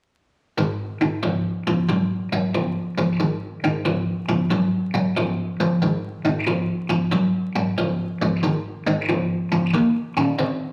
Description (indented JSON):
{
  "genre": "blues",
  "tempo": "92 BPM",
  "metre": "4/4",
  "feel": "swing 67% on 8ths",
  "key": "unclear",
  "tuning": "A4 = 439 Hz",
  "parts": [
    { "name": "biting overdriven guitar", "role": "riff", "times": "0.6-10.7 s", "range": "Ab2 to Db4", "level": "-22 LUFS", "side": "equal", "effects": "phaser" }
  ],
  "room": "wet large studio reverb, RT60 1.2 s",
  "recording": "vinyl crackle",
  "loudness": "-23 LUFS",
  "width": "mono",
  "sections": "0.6-10.7 A section",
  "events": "none",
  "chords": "0.6 Ab5; 9.7 Eb5",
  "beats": "| 0.58 1.24 1.89 2.54 | 3.20 3.85 4.51 5.16 | 5.82 6.47 7.13 7.78 | 8.44 9.09 9.74 10.40"
}